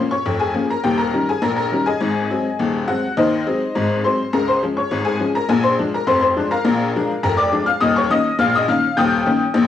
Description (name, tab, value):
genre	ragtime piano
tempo	103 BPM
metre	2/4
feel	straight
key	unclear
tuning	A4 = 441 Hz
part	tack piano	solo	0.0-9.7 s	Eb1 to G6	-16 LUFS	left 2 dB	cassette tape
room	moderate spring reverb, RT60 1.5 s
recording	home recording on cassette, small room ambience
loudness	-16 LUFS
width	side -10 dB against mid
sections	0.0-9.7 A section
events	none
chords	0.0 Bbm; 0.8 Eb7; 2.0 Ab7; 3.2 Ab7/Eb; 4.3 Db; 5.5 Bb7; 7.8 Eb7